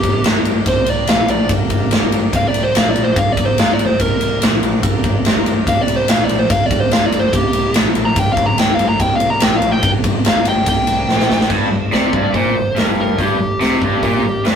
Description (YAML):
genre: blues rock power trio and southern rock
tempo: 144 BPM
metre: 4/4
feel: straight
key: G minor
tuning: A4 = 438 Hz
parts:
  - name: fuzz lead guitar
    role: melody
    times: 0.0-14.4 s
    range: G4 to Bb5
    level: -18 LUFS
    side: right 1 dB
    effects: distortion
  - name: overdriven tonewheel organ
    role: sustained chords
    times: 0.0-14.6 s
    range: Bb3 to Bb4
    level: -29 LUFS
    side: right 2 dB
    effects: slow rotary speaker
  - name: growling picked electric bass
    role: bass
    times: 0.0-14.6 s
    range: G1 to C2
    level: -24 LUFS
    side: equal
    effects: overdrive
  - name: big rock drum kit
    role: drums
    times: 0.0-14.6 s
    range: crash cymbal, hi-hat, kick drum, ride cymbal, snare drum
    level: -15 LUFS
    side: equal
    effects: none
  - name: raw garage guitar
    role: riff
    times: 11.5-14.6 s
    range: G2 to C3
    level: -17 LUFS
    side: equal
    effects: overdrive
room: light reverb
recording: rough rehearsal-room recording, warm saturation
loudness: -13 LUFS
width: side -7 dB against mid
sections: 0.0-11.5 A section; 11.5-14.6 B section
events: lead electric guitar solo 0.0-11.5; drum fill 11.1-11.5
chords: 0.0 Gm